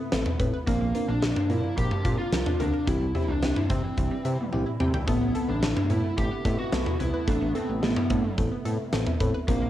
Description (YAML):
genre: synth-pop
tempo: 109 BPM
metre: 4/4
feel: straight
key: unclear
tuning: A4 = 440 Hz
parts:
  - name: mellow FM electric piano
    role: accompaniment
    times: 0.0-9.7 s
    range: B3 to B4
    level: -33 LUFS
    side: left 1 dB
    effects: chorus, phaser, cassette tape
  - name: sweeping resonant pad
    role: sustained chords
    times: 0.0-9.7 s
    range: C3 to E4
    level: -36 LUFS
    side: equal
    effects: wide subtle chorus, cassette tape
  - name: wide unison pluck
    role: arpeggios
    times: 0.1-9.7 s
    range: E3 to G5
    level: -37 LUFS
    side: equal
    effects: cassette tape, tape echo
  - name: fat analog bass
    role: bass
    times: 0.1-9.7 s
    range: A1 to C3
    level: -28 LUFS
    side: equal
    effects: none
  - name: huge arena drum kit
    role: drums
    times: 0.1-9.6 s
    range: cowbell, hi-hat, kick drum, snare drum, toms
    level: -28 LUFS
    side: equal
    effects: cassette tape
  - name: lead guitar through a small cranked amp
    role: melody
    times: 0.7-9.7 s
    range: Bb3 to G4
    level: -30 LUFS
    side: equal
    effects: overdrive, tape echo
room: light reverb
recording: home recording on cassette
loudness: -24 LUFS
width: side -12 dB against mid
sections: 0.0-9.7 A section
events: drum fill 4.5-5.1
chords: 0.0 Amadd9; 0.7 Bbadd9; 2.9 C; 5.1 Amadd9